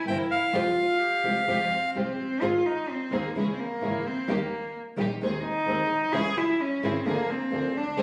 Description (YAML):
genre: tango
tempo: 129 BPM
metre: 4/4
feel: rubato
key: Ab major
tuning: A4 = 441 Hz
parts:
  - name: warm cello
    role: second line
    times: 0.0-8.0 s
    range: Ab3 to Ab4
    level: -30 LUFS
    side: equal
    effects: none
  - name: bandoneon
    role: melody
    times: 0.1-1.9 s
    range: F5 to G5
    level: -28 LUFS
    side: equal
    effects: none
  - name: nylon-string guitar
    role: accompaniment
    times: 0.1-8.0 s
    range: C3 to Ab4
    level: -34 LUFS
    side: equal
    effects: none
  - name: rich studio string section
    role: stabs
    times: 0.1-8.0 s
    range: Ab3 to Bb4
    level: -40 LUFS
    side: equal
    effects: none
  - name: clear double bass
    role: bass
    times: 0.1-8.0 s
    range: G1 to F2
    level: -37 LUFS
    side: equal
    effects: none
room: moderate large studio reverb, RT60 1.2 s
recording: recorded on a phone in the room, club reverb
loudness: -27 LUFS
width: mono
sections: 0.0-2.4 A section; 2.4-8.0 B section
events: cello solo 2.4-8.0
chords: 0.0 C7; 0.5 Fmadd9; 2.4 Ab; 3.4 Dbm; 4.3 Eb; 5.2 Ab/Eb; 6.1 Dbm; 7.1 Bb7/D